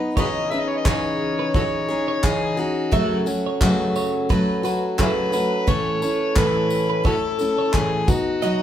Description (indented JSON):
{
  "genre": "acoustic pop",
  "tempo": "87 BPM",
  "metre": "4/4",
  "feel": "swing 55% on 16ths",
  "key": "unclear",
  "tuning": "A4 = 440 Hz",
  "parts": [
    { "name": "picked steel-string acoustic guitar", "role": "accompaniment", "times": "0.0-8.6 s", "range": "F#2 to B4", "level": "-22 LUFS", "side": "equal", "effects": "none" },
    { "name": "overdriven harmonica", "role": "melody", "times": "0.2-8.6 s", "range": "C#4 to E5", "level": "-24 LUFS", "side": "left 2 dB", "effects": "none" },
    { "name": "twelve-string electric guitar", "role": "arpeggios", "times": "0.2-8.6 s", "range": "G#4 to E5", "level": "-30 LUFS", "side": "right 4 dB", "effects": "none" },
    { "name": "natural country drum kit", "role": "drums", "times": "0.2-8.3 s", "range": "handclaps, kick drum, tambourine", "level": "-23 LUFS", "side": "right 1 dB", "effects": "none" }
  ],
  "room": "moderate large studio reverb, RT60 1.2 s",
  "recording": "band playing live in one room",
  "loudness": "-19 LUFS",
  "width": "side -10 dB against mid",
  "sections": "0.0-8.6 A section",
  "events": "none",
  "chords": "0.2 C#madd9; 2.9 F#m; 5.7 A; 8.1 B"
}